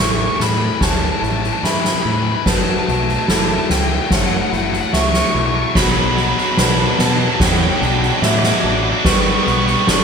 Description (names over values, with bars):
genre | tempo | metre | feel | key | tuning
post-rock | 73 BPM | 4/4 | straight | unclear | A4 = 440 Hz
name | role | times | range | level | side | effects
overdriven semi-hollow guitar | melody | 0.0-10.0 s | F#5 to D6 | -22 LUFS | right 1 dB | none
electric guitar through a small old amp | arpeggios | 0.0-10.0 s | A4 to E5 | -27 LUFS | right 3 dB | none
twangy electric guitar | arpeggios | 0.0-10.0 s | B2 to A4 | -26 LUFS | left 2 dB | spring reverb
distorted electric guitar | riff | 0.0-10.0 s | A2 to B3 | -22 LUFS | left 7 dB | overdrive
growling fingered electric bass | bass | 0.0-10.0 s | F#1 to B2 | -22 LUFS | equal | overdrive
soft-mallet drum kit | drums | 0.4-10.0 s | kick drum, snare drum | -18 LUFS | equal | none
tight distorted guitar | riff | 5.8-10.0 s | B2 to B3 | -20 LUFS | right 7 dB | distortion
room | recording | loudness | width
wet studio reverb, RT60 0.6 s | band playing live in one room | -14 LUFS | side -6 dB against mid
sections
0.0-10.0 A section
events
build-up 0.0-10.0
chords
0.0 A; 2.5 F#m7; 5.8 Bmadd9; 9.1 G